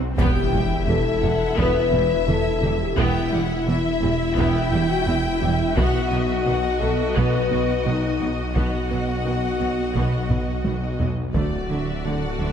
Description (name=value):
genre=cinematic, hybrid orchestral and electronic film score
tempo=86 BPM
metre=4/4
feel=straight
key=E minor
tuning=A4 = 440 Hz
part: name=detuned saw bass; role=bass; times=0.0-12.5 s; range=D1 to B1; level=-28 LUFS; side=equal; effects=none
part: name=swell and impact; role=sound effects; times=0.0-3.0 s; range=none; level=-30 LUFS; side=equal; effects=none
part: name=warm symphonic violin section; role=melody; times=0.2-12.5 s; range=D5 to E5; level=-32 LUFS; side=left 4 dB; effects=none
part: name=clear symphonic violin section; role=second line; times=0.2-12.5 s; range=D5 to G5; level=-31 LUFS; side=left 2 dB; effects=none
part: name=rich symphonic viola section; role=accompaniment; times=0.2-12.5 s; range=D3 to F#4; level=-30 LUFS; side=right 2 dB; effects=none
part: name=mellow French horn section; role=sustained chords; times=0.2-12.5 s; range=D#4 to B4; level=-25 LUFS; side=left 5 dB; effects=none
part: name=smooth synth bass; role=riff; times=0.2-12.5 s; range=D2 to B3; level=-29 LUFS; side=right 2 dB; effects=none
part: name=clear symphonic double bass section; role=bass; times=0.2-12.5 s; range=E1 to D2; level=-28 LUFS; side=right 4 dB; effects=none
part: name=warm symphonic cello section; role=bass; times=0.2-12.5 s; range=E2 to D3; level=-29 LUFS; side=right 3 dB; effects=none
part: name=solo taiko drums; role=drums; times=0.2-12.0 s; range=none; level=-27 LUFS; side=equal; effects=none
room=moderate scoring stage reverb, RT60 1.9 s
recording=none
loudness=-19 LUFS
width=side -8 dB against mid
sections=0.2-12.5 A section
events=swell 0.0; impact 0.2-3.0; drum fill 10.3-11.3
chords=0.2 Em; 5.8 B; 11.3 D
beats=| 0.18 0.88 1.58 2.28 | 2.98 3.67 4.37 5.07 | 5.77 6.46 7.16 7.86 | 8.56 9.26 9.95 10.65 | 11.35 12.05